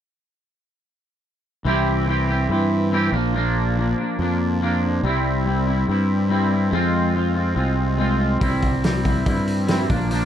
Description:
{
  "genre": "indie rock",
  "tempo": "142 BPM",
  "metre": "4/4",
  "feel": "straight",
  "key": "C mixolydian",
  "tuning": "A4 = 440 Hz",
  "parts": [
    { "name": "twangy electric guitar", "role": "riff", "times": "1.6-10.2 s", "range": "E3 to G4", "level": "-21 LUFS", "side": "equal", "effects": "double-tracked left and right" },
    { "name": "fuzz fingered electric bass", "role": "bass", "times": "1.7-10.2 s", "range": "Bb1 to G2", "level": "-21 LUFS", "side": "equal", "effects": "overdrive" },
    { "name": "loose indie drum kit", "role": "drums", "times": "8.4-10.2 s", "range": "hi-hat, kick drum, snare drum", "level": "-22 LUFS", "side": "equal", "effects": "none" }
  ],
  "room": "light reverb",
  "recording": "dark, warm production",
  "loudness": "-18 LUFS",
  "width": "side -10 dB against mid",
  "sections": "1.7-10.2 A section",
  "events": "none",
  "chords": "1.7 C; 3.1 Bb; 5.0 C; 6.7 Fm; 8.4 C"
}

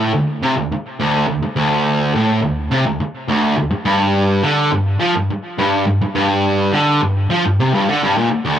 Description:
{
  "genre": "rock",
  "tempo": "105 BPM",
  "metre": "4/4",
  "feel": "straight",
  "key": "unclear",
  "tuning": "A4 = 440 Hz",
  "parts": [
    { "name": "fuzz guitar", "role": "solo", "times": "0.0-8.6 s", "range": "D2 to F3", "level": "-14 LUFS", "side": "equal", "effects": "distortion, cassette tape, analog delay" }
  ],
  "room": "light reverb",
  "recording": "home recording on cassette",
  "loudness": "-14 LUFS",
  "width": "side -10 dB against mid",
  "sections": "0.0-8.6 A section",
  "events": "none",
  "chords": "none"
}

